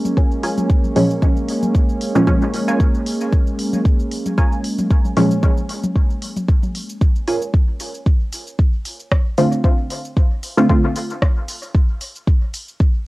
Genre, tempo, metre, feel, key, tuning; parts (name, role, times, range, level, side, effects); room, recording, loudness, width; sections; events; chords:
dub techno; 114 BPM; 4/4; swing 55% on 16ths; A4 = 439 Hz
warbly tape-like pad; sustained chords; 0.0-7.5 s; Ab3 to Db4; -23 LUFS; right 1 dB; chorus, built-in reverb, sidechain pumping, cassette tape
electronic toms and congas; percussion; 0.0-6.7 s; -26 LUFS; left 1 dB; sidechain pumping on toms, cassette tape, sidechain pumping on perc, dub echo
deep house drum kit; drums; 0.1-12.9 s; cabasa, hi-hat, rim click; -28 LUFS; equal; cassette tape
filtered dub chord stab; riff; 0.2-7.4 s; F4 to Ab5; -27 LUFS; right 2 dB; phaser, wide subtle chorus, sidechain pumping, cassette tape, dub echo
electronic kick drum; drums; 0.2-12.9 s; -15 LUFS; equal; cassette tape
filtered dub chord stab; stabs; 1.0-10.8 s; Bb2 to F4; -17 LUFS; equal; chorus, phaser, sidechain pumping, cassette tape, dub echo
light reverb; home recording on cassette; -16 LUFS; side -20 dB against mid
0.0-7.5 A section; 7.5-13.1 A section
filter sweep on synth stab 0.0-7.5
0.0 Bbm7; 7.5 Dm7